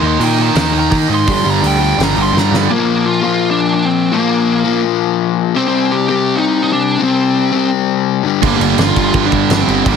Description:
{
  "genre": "punk rock",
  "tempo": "168 BPM",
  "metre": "4/4",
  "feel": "straight",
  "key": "unclear",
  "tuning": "A4 = 440 Hz",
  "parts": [
    { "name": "bluesy overdriven lead guitar", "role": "melody", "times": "0.0-10.0 s", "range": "Bb3 to C6", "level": "-16 LUFS", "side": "right 2 dB", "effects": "distortion" },
    { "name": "distorted electric guitar", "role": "riff", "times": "0.0-2.7, 8.4-10.0 s", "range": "G2 to Eb4", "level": "-16 LUFS", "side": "right 19 dB", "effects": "overdrive" },
    { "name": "overdriven semi-hollow guitar", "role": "riff", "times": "0.0-10.0 s", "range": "G2 to Eb4", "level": "-15 LUFS", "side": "left 12 dB", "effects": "none" },
    { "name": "growling picked electric bass", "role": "bass", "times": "0.0-2.7, 8.4-10.0 s", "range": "G1 to Eb3", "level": "-18 LUFS", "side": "right 2 dB", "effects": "overdrive" },
    { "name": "loose indie drum kit", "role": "drums", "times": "0.2-2.6, 8.4-9.9 s", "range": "crash cymbal, hi-hat, kick drum, snare drum", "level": "-18 LUFS", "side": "right 1 dB", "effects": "none" }
  ],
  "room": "light reverb",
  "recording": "heavily compressed radio sound, multiband compression",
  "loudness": "-11 LUFS",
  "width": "side -6 dB against mid",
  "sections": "0.0-2.7 A section; 2.7-10.0 B section",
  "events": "half time 0.0-2.7; lead electric guitar solo 0.0-2.7; drum fill 2.3-2.7",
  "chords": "0.0 Eb; 1.3 G5; 2.7 Bb5; 5.6 C5; 8.2 Gm"
}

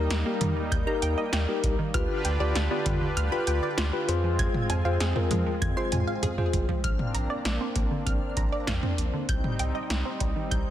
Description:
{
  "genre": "synth-pop",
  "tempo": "98 BPM",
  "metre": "4/4",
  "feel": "straight",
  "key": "unclear",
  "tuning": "A4 = 440 Hz",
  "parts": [
    { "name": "tine electric piano", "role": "accompaniment", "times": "0.0-6.6 s", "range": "Eb4 to D5", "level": "-31 LUFS", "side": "left 4 dB", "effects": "medium stereo tremolo" },
    { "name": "brassy analog pad", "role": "sustained chords", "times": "0.0-10.7 s", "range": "D3 to B4", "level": "-33 LUFS", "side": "right 1 dB", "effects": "chorus, tremolo" },
    { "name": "wide unison pluck", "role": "arpeggios", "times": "0.0-10.6 s", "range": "D3 to Ab6", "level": "-33 LUFS", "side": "right 2 dB", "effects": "digital delay" },
    { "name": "round analog bass", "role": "bass", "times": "0.0-10.6 s", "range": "Ab1 to F3", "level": "-28 LUFS", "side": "equal", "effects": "none" },
    { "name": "electro analog drum machine", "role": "drums", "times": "0.1-10.7 s", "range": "cowbell, hi-hat, kick drum, snare drum, toms", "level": "-29 LUFS", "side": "equal", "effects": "none" }
  ],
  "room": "moderate concert hall reverb, RT60 2.3 s",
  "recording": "dense, heavily limited modern master",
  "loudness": "-24 LUFS",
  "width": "side -11 dB against mid",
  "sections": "0.0-6.8 A section; 6.8-10.7 B section",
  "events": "drum fill 5.6-6.8",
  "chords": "0.0 Eb; 1.9 G7/D; 4.1 Fm; 6.8 Bbadd9; 9.3 Cm"
}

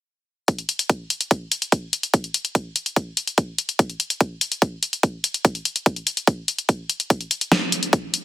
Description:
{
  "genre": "trance",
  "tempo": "145 BPM",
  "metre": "4/4",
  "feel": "straight",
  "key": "none",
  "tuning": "none",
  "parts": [
    { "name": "big-room dance drum kit", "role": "drums", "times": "0.5-8.2 s", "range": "hi-hat, snare drum", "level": "-22 LUFS", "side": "left 2 dB", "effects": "none" },
    { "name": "electronic kick drum", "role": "drums", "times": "0.5-8.0 s", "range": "none", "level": "-19 LUFS", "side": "equal", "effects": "high-pass filter on kick" }
  ],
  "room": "light reverb, digital ambience",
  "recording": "dense, heavily limited modern master",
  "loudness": "-20 LUFS",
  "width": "side -15 dB against mid",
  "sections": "0.5-8.2 A section",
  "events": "none",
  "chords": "none"
}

